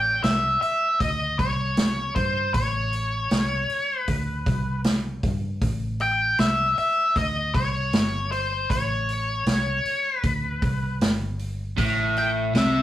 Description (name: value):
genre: blues rock power trio and southern rock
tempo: 78 BPM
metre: 4/4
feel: straight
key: unclear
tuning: A4 = 440 Hz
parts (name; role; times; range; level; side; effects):
- octave-fuzz lead guitar; melody; 0.0-12.8 s; C5 to G5; -24 LUFS; left 1 dB; distortion, slapback echo
- vintage muted fingered electric bass; bass; 0.0-12.8 s; G1 to G2; -28 LUFS; equal; none
- vintage drum kit; drums; 0.2-12.7 s; hi-hat, kick drum, snare drum; -26 LUFS; equal; none
- biting overdriven guitar; riff; 11.8-12.8 s; A2 to C3; -22 LUFS; equal; spring reverb
room: moderate studio ambience, RT60 0.5 s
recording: rough rehearsal-room recording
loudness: -21 LUFS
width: side -13 dB against mid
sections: 0.0-12.8 A section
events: none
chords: 0.0 A